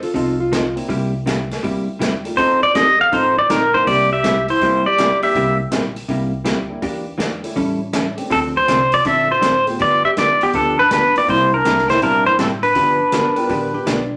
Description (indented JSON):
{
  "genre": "country, western swing",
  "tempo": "162 BPM",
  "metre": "4/4",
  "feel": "swing 65% on 8ths",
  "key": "C mixolydian",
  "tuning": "A4 = 440 Hz",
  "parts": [
    { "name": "clean lap steel guitar", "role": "second line", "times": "0.0-0.8, 13.1-14.2 s", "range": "D4 to Bb4", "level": "-26 LUFS", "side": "equal", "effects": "none" },
    { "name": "swinging big-band drum kit", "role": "drums", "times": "0.0-14.0 s", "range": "hi-hat, kick drum, snare drum", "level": "-29 LUFS", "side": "equal", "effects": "none" },
    { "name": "vintage hollow-body jazz guitar", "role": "accompaniment", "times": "0.1-14.0 s", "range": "C3 to A4", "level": "-25 LUFS", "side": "equal", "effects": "none" },
    { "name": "upright bass", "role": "bass", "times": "0.2-14.2 s", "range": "G1 to F2", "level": "-33 LUFS", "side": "equal", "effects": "none" },
    { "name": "warm upright piano", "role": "accompaniment", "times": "0.8-13.8 s", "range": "G3 to G4", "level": "-32 LUFS", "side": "equal", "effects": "none" },
    { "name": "pedal steel guitar", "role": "melody", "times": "2.4-5.6, 8.3-13.9 s", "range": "G4 to F5", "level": "-17 LUFS", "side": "equal", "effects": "none" },
    { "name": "breathy clarinet", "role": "second line", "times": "2.4-5.6, 8.3-13.9 s", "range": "B3 to A4", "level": "-26 LUFS", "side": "equal", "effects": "none" }
  ],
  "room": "wet large studio reverb, RT60 0.8 s",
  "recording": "none",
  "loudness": "-17 LUFS",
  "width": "mono",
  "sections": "0.0-14.2 A section",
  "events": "none",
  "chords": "0.0 C9; 2.4 F7; 3.9 C9; 6.8 Em7b5; 7.6 A7; 8.3 Dm7; 9.8 G7; 11.3 C9; 12.8 G9",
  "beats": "0.16 0.53 | 0.90 1.27 1.64 2.01 | 2.38 2.75 3.12 3.49 | 3.86 4.24 4.61 4.98 | 5.35 5.72 6.09 6.46 | 6.83 7.20 7.57 7.94 | 8.31 8.69 9.06 9.43 | 9.80 10.17 10.54 10.91 | 11.28 11.65 12.02 12.39 | 12.76 13.13 13.50 13.87"
}